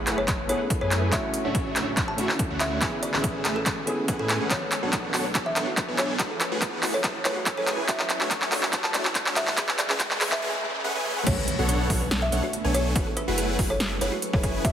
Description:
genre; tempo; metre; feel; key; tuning
future bass; 142 BPM; 4/4; half-time; unclear; A4 = 438 Hz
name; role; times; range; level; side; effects
felt-muted upright piano; accompaniment; 0.0-4.5 s; A3 to G#4; -33 LUFS; equal; sidechain pumping, ping-pong delay
ethereal airy pad; sustained chords; 0.0-14.7 s; D3 to B4; -39 LUFS; right 1 dB; none
supersaw chords; riff; 0.0-14.7 s; A3 to A5; -30 LUFS; equal; sidechain pumping, low-pass filter
saturated sub bass; bass; 0.0-14.7 s; D1 to A2; -31 LUFS; equal; sidechain pumping
riser, noise sweep and impact; sound effects; 1.3-13.0 s; none; -37 LUFS; equal; none
big-room dance drum kit; drums; 0.1-14.7 s; crash cymbal, handclaps, hi-hat, snare drum; -27 LUFS; equal; overdrive
kalimba; melody; 0.2-14.7 s; A4 to A5; -32 LUFS; equal; sidechain pumping, ping-pong delay
electronic kick drum; drums; 0.3-14.7 s; none; -29 LUFS; equal; overdrive
thumb-piano-like synth pluck; arpeggios; 4.5-14.7 s; F#4 to D5; -37 LUFS; right 1 dB; chorus, sidechain pumping, ping-pong delay
room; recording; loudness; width
moderate shimmer reverb, RT60 5.2 s; heavily compressed radio sound, high-pass filter; -23 LUFS; side -9 dB against mid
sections
0.0-11.3 A section; 11.3-14.7 B section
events
build-up 0.0-11.3; drum fill 0.0-10.4; filter sweep on supersaw synth 0.0-11.3; filter sweep 0.0-11.3; riser 1.3-11.3; noise sweep 9.6-11.3; break 10.4-11.3; drop 11.3-14.7; impact 11.3-13.0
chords
0.0 F#m11; 1.1 Dmaj9; 2.8 Amaj9; 4.5 Bm9; 6.2 F#m11; 7.9 Dmaj9; 9.6 Amaj9; 11.3 Bm9; 13.0 F#m11

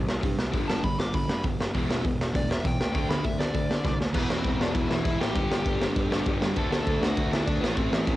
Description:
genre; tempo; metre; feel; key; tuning
punk rock; 199 BPM; 4/4; straight; E minor; A4 = 440 Hz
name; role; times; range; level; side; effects
raw garage guitar; riff; 0.0-8.2 s; E2 to D4; -34 LUFS; left 7 dB; overdrive
sludgy distorted guitar; riff; 0.0-8.2 s; E2 to D4; -32 LUFS; right 5 dB; overdrive
fuzz picked electric bass; bass; 0.0-8.2 s; E1 to D3; -31 LUFS; equal; overdrive
raw garage drum kit; drums; 0.1-8.1 s; crash cymbal, hi-hat, kick drum, snare drum; -27 LUFS; equal; cassette tape
dark smooth lead guitar; melody; 0.7-8.2 s; B3 to D6; -33 LUFS; left 1 dB; overdrive
room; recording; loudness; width
studio ambience; home recording on cassette; -24 LUFS; side -16 dB against mid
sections
0.0-4.2 A section; 4.2-8.2 B section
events
lead electric guitar solo 0.0-4.2; drum fill 3.9-4.2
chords
0.0 C5; 0.5 G; 1.7 E5; 2.8 D5; 4.2 Em; 5.4 G5; 6.6 D; 7.6 Am

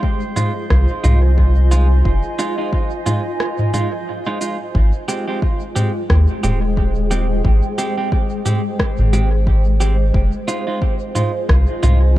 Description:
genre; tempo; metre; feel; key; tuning
ambient dub; 89 BPM; 4/4; swing 57% on 16ths; unclear; A4 = 439 Hz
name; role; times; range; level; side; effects
granular cloud pad; sustained chords; 0.0-12.2 s; Ab3 to Ab5; -24 LUFS; equal; built-in reverb
electronic kick drum; drums; 0.0-12.2 s; none; -19 LUFS; equal; overdrive
drifting glass-harmonics texture; texture; 0.0-4.8 s; C5; -35 LUFS; right 4 dB; chorus, built-in reverb
semi-hollow electric guitar; stabs; 0.4-12.0 s; Ab3 to G4; -25 LUFS; right 2 dB; dub echo
organic electronic drum kit; drums; 0.4-12.0 s; rim click, shaker, toms; -22 LUFS; equal; none
soft dub sub bass; bass; 0.7-12.2 s; Eb1 to Eb2; -13 LUFS; equal; none
room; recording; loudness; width
digital ambience; dark, warm production; -15 LUFS; side -15 dB against mid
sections
0.0-4.8 A section; 4.8-12.2 A section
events
break 3.4-4.8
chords
0.0 Fm7; 4.8 Abmaj7; 10.1 Fm7

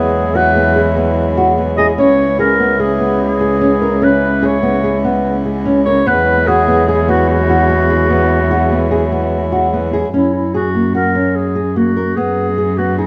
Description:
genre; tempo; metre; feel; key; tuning
contemporary instrumental, chamber music in an uneven meter; 147 BPM; 5/4; straight; unclear; A4 = 441 Hz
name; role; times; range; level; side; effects
mellow clarinet; melody; 0.0-13.1 s; E4 to D#5; -19 LUFS; equal; none
pedal harmonium; sustained chords; 0.0-10.1 s; C#3 to E4; -21 LUFS; equal; none
nylon-string guitar; arpeggios; 0.0-13.1 s; A#3 to A#4; -19 LUFS; equal; none
warm cello; bass; 0.0-13.1 s; C#2 to F#2; -20 LUFS; equal; none
room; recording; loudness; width
moderate recital hall reverb, RT60 1.8 s; none; -14 LUFS; mono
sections
0.0-10.1 A section; 10.1-13.1 B section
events
none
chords
0.0 Eadd9; 2.0 C#m7; 6.1 Eadd9; 10.1 F#add9; 12.2 E/F# (rootless)

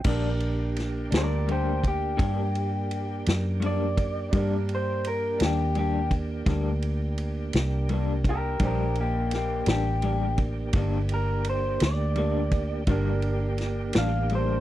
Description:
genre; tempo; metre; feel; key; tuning
slow blues; 56 BPM (dotted quarters); 12/8; straight; G minor; A4 = 440 Hz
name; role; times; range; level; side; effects
clear grand piano; accompaniment; 0.0-14.6 s; D4 to C5; -38 LUFS; right 4 dB; none
vintage muted fingered electric bass; bass; 0.0-14.6 s; G1 to G2; -27 LUFS; equal; none
vintage drum kit; drums; 0.0-14.5 s; crash cymbal, kick drum, ride cymbal, snare drum; -27 LUFS; equal; none
electric guitar through a small old amp; accompaniment; 0.1-14.5 s; G2 to D4; -31 LUFS; left 5 dB; tremolo
tonewheel organ; sustained chords; 0.1-14.6 s; Bb3 to G4; -34 LUFS; right 2 dB; slow rotary speaker, chorus vibrato
electric guitar through a small old amp; melody; 1.2-14.6 s; Bb3 to F5; -30 LUFS; left 1 dB; none
room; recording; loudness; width
little or no reverb; dry, close 1970s-style studio recording; -24 LUFS; side -14 dB against mid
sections
0.1-14.6 A section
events
clean electric guitar solo 0.1-14.6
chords
0.1 Gm

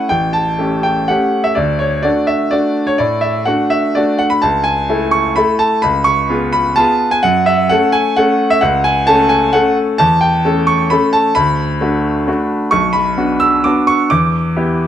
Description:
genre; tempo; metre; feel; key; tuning
classical, piano waltz; 119-138 BPM; 3/4; rubato; D major from 10.0 s; A4 = 439 Hz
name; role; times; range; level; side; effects
bright grand piano; solo; 0.0-14.9 s; A1 to E6; -12 LUFS; equal; none
room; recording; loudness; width
moderate recital hall reverb, RT60 1.4 s; close, detailed microphones; -11 LUFS; side -10 dB against mid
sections
0.0-14.9 A section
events
none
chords
0.1 A7; 1.6 D; 4.4 A/C#; 5.8 C#7; 7.2 F#m; 10.0 A7/E; 11.4 D; 12.7 Bm; 14.1 Em7

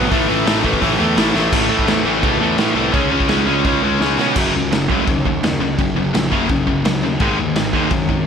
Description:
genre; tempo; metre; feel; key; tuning
punk rock; 169 BPM; 4/4; straight; unclear; A4 = 440 Hz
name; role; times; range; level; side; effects
fuzz guitar; riff; 0.0-8.3 s; Gb2 to C#4; -23 LUFS; equal; distortion
overdriven electric guitar; riff; 0.0-8.3 s; Gb2 to C#4; -21 LUFS; right 12 dB; none
tight distorted guitar; riff; 0.0-8.3 s; Gb2 to C#4; -19 LUFS; left 12 dB; distortion
fuzz picked electric bass; bass; 0.0-8.2 s; Gb1 to B2; -24 LUFS; equal; overdrive
raw garage drum kit; drums; 0.1-8.2 s; crash cymbal, hi-hat, kick drum, snare drum; -20 LUFS; equal; none
room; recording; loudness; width
little or no reverb; none; -14 LUFS; side -7 dB against mid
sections
0.0-1.5 A section; 1.5-4.4 B section; 4.4-8.3 C section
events
drum fill 1.3, 4.0-4.4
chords
0.1 A5; 2.9 C#5; 4.4 Gb5; 7.2 Ab5

